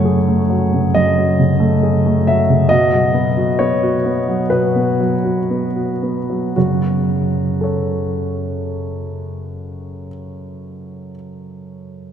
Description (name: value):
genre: neoclassical minimalist piano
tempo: 55-69 BPM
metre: 4/4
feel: rubato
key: F# dorian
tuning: A4 = 440 Hz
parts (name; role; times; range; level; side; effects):
- warm concert grand piano; solo; 0.0-12.1 s; F#2 to E5; -15 LUFS; equal; none
room: wet cathedral reverb, RT60 5.6 s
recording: recorded in a church or concert hall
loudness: -14 LUFS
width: side -8 dB against mid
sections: 0.0-6.6 A section; 6.6-10.7 B section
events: slowing down 0.0-6.6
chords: 0.0 F#madd9; 2.7 B; 6.6 F#m